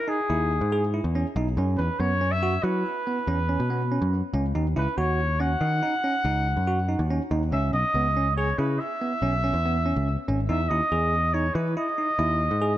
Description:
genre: progressive instrumental, band music in an uneven meter.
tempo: 141 BPM.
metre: 7/4.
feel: straight.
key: E major.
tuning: A4 = 439 Hz.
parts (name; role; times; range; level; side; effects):
warm trumpet; melody; 0.0-12.8 s; G#4 to F#5; -27 LUFS; right 1 dB; none.
bell-like tine electric piano; arpeggios; 0.1-12.7 s; B3 to G#4; -30 LUFS; right 2 dB; ping-pong delay.
picked electric bass; bass; 0.3-12.8 s; G#1 to F#3; -25 LUFS; equal; none.
room: light reverb, small room ambience.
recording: none.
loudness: -22 LUFS.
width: side -13 dB against mid.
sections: 0.0-12.8 A section.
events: none.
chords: 0.0 Emaj7; 1.6 F#7sus4; 4.6 D#m7; 7.5 C#m7; 10.5 Emaj7.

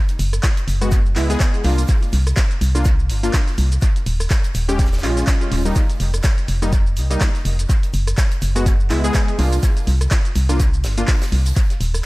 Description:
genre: deep house.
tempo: 124 BPM.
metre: 4/4.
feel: swing 57% on 16ths.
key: unclear.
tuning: A4 = 440 Hz.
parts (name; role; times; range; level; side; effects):
gated 80s drum kit; drums; 0.1-11.9 s; hi-hat, shaker, snare drum; -35 LUFS; right 1 dB; sidechain pumping on hats, high-pass filter on hats, high-pass filter on snare, sidechain pumping on perc, high-pass filter on perc, high-pass filter on room, dub echo.
punchy analog drum machine; drums; 0.1-12.0 s; handclaps, hi-hat, rim click, shaker; -27 LUFS; right 1 dB; dub echo.
organ-like FM bass; bass; 0.2-12.0 s; Eb1 to Db2; -18 LUFS; equal; tube saturation, sidechain pumping.
electronic kick drum; drums; 0.4-11.7 s; none; -17 LUFS; equal; overdrive.
warm analog keys; stabs; 0.8-11.1 s; G3 to Ab4; -24 LUFS; equal; chorus, sidechain pumping, tape echo.
room: studio reverb.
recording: echo-heavy mix.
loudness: -15 LUFS.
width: side -21 dB against mid.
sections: 0.0-12.1 A section.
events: none.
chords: 0.0 Gbsus4; 1.6 C9sus4; 3.8 Eb9sus4; 5.8 F9sus4; 7.7 Gbsus4; 9.4 C9sus4.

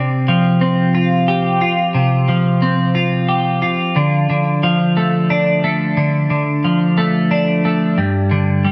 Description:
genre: rock.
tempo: 60 BPM (dotted quarters).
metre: 6/8.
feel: straight.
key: unclear.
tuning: A4 = 439 Hz.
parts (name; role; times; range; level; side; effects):
twelve-string electric guitar; solo; 0.0-8.7 s; G2 to G4; -16 LUFS; equal; lush chorus, slapback echo.
room: moderate lush hall reverb, RT60 1.9 s.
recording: none.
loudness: -16 LUFS.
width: mono.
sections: 0.0-8.7 A section.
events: none.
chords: 0.0 Csus4; 4.0 Dm; 8.0 G5.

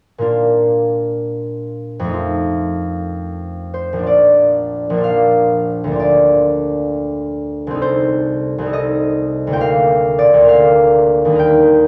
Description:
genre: classical, solo harp piece.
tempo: 58-70 BPM (dotted quarters).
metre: 6/8.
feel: rubato.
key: Bb major.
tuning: A4 = 440 Hz.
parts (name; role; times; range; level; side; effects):
concert harp; solo; 0.2-11.9 s; Bb1 to G5; -15 LUFS; equal; none.
room: wet recital hall reverb, RT60 1.6 s.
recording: none.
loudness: -15 LUFS.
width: mono.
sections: 0.3-4.1 A section; 4.1-11.9 B section.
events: none.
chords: 0.3 Bb; 2.2 F7; 4.1 Bb; 6.0 Bb/D; 7.8 Adim/C; 9.6 Bb/D.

